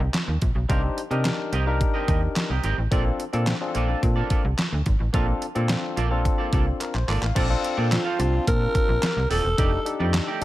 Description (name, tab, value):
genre	early-eighties boogie funk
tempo	108 BPM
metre	4/4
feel	straight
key	unclear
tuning	A4 = 440 Hz
part	semi-hollow electric guitar	riff	0.0-10.4 s	A3 to F5	-31 LUFS	right 5 dB	lush chorus
part	slap-like FM bass	bass	0.0-10.4 s	Eb1 to C3	-24 LUFS	equal	none
part	detuned 8-bit digital drum machine	drums	0.1-10.4 s	crash cymbal, handclaps, hi-hat, kick drum, snare drum	-25 LUFS	equal	none
part	barky tine electric piano	accompaniment	0.7-10.4 s	C4 to A5	-29 LUFS	left 4 dB	none
part	growling alto saxophone	melody	7.9-10.1 s	F4 to Bb4	-26 LUFS	equal	tape echo
room	little or no reverb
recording	none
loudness	-21 LUFS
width	side -15 dB against mid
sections	0.0-7.4 A section; 7.4-10.4 B section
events	drum fill 6.8-7.4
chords	0.0 Cm7; 2.9 Bbmaj7; 7.4 Bbmaj9; 9.6 F13